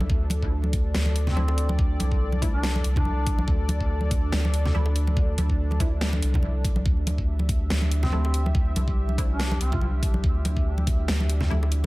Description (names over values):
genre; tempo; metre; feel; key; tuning
deep dubstep; 142 BPM; 4/4; swing 56% on 16ths, half-time; unclear; A4 = 439 Hz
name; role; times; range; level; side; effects
dark analog pad; sustained chords; 0.0-11.9 s; D4 to E5; -35 LUFS; left 1 dB; chorus
soft dub sub bass; bass; 0.0-11.9 s; C2 to D2; -24 LUFS; equal; none
congas and bongos; percussion; 0.0-11.9 s; none; -32 LUFS; equal; none
electronic kick drum; drums; 0.1-11.0 s; none; -24 LUFS; equal; none
dubstep drum kit; drums; 0.3-11.8 s; hi-hat, snare drum; -31 LUFS; equal; none
mellow duduk; melody; 1.3-3.5, 8.0-9.9 s; C4 to F4; -35 LUFS; equal; dub echo
filtered dub chord stab; stabs; 1.4-11.6 s; F3 to E4; -39 LUFS; left 1 dB; analog chorus, dub echo
room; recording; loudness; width
little or no reverb; dense, heavily limited modern master, vinyl crackle; -22 LUFS; side -20 dB against mid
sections
0.0-11.9 A section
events
none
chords
0.0 Dsus2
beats
| 0.10 0.52 0.94 1.36 | 1.79 2.21 2.63 3.06 | 3.48 3.90 4.32 4.75 | 5.17 5.59 6.01 6.43 | 6.86 7.28 7.70 8.12 | 8.55 8.97 9.39 9.82 | 10.24 10.66 11.08 11.51